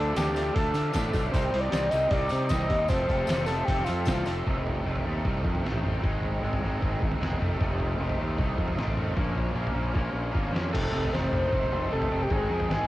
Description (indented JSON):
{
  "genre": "indie rock",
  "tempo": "153 BPM",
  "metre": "4/4",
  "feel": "straight",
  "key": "F mixolydian",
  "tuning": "A4 = 442 Hz",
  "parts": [
    { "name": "overdriven synth lead", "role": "melody", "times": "0.0-4.2, 10.7-12.9 s", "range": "F4 to Eb5", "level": "-29 LUFS", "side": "left 1 dB", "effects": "distortion, chorus, cassette tape" },
    { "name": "combo organ", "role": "sustained chords", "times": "0.0-4.4, 7.6-10.7 s", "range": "Db4 to D6", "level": "-41 LUFS", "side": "left 6 dB", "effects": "cassette tape" },
    { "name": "cranked stack guitar", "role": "riff", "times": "0.0-12.9 s", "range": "Eb3 to A4", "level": "-36 LUFS", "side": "left 7 dB", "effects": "overdrive, cassette tape" },
    { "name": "raw garage guitar", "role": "riff", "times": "0.0-12.9 s", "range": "F2 to Eb4", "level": "-34 LUFS", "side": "right 7 dB", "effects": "overdrive, ensemble chorus, cassette tape" },
    { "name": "fuzz fingered electric bass", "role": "bass", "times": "0.0-12.9 s", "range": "E1 to D3", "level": "-30 LUFS", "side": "equal", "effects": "overdrive" },
    { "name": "trip hop sampler-style drum kit", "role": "drums", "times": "0.2-12.8 s", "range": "crash cymbal, hi-hat, kick drum, snare drum, toms", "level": "-30 LUFS", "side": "equal", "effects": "cassette tape" },
    { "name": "tambourine", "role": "percussion", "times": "0.2-4.4 s", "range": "none", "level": "-48 LUFS", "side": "left 8 dB", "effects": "none" }
  ],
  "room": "light reverb",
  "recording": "home recording on cassette",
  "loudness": "-25 LUFS",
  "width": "side -16 dB against mid",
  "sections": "0.0-4.5 A section; 4.5-10.7 B section; 10.7-12.9 C section",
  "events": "drum fill 10.0-10.7",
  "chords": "0.0 Dm; 1.3 Cmadd9; 2.9 Fadd9; 4.5 F7; 6.0 Ab; 7.4 F7; 9.2 Bbmadd9; 10.7 F7; 12.3 Ab",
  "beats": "0.17 0.56 0.95 | 1.34 1.73 2.12 2.51 | 2.90 3.29 3.68 4.07 | 4.46 4.85 5.25 5.64 | 6.03 6.42 6.82 7.21 | 7.60 8.00 8.39 8.78 | 9.17 9.56 9.96 10.35 | 10.74 11.13 11.52 11.91 | 12.30 12.69"
}